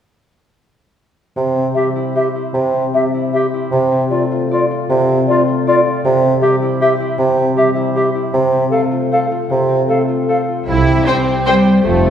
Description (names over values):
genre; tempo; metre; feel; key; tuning
classical; 155 BPM; 3/4; uneven beats, rubato; C major; A4 = 440 Hz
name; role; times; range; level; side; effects
warm bassoon; accompaniment; 1.4-9.8 s; C3; -17 LUFS; right 2 dB; none
concert harp; arpeggios; 1.4-12.1 s; F2 to D5; -19 LUFS; left 2 dB; none
bright clarinet; second line; 1.8-10.4 s; F4 to A4; -19 LUFS; left 1 dB; none
small flute group; second line; 1.8-10.4 s; D5 to F5; -20 LUFS; left 1 dB; none
clear French horn section; sustained chords; 10.7-12.1 s; F4 to C5; -18 LUFS; left 1 dB; none
rich symphonic cello section; bass; 10.7-12.1 s; G3 to E4; -14 LUFS; right 1 dB; none
warm chamber double bass section; bass; 10.7-12.1 s; F1 to C2; -18 LUFS; right 3 dB; none
warm symphonic violin section; melody; 11.1-11.5 s; G5; -24 LUFS; left 3 dB; none
warm symphonic violin section; second line; 11.1-11.5 s; C5; -24 LUFS; left 3 dB; none
warm symphonic viola section; accompaniment; 11.1-11.6 s; C5; -22 LUFS; left 1 dB; none
room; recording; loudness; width
wet scoring stage reverb, RT60 1.9 s; recorded in a church or concert hall; -13 LUFS; side -9 dB against mid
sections
1.4-10.7 A section; 10.7-12.1 B section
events
none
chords
1.4 C; 3.7 Dm7/C; 6.0 C; 8.3 F/C; 10.7 C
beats
| 1.36 1.75 2.15 | 2.54 2.93 3.33 | 3.72 4.11 4.51 | 4.89 5.27 5.67 | 6.04 6.42 6.81 | 7.18 7.56 7.96 | 8.34 8.72 9.12 | 9.50 9.89 10.29 | 10.69 11.07 11.47 | 11.84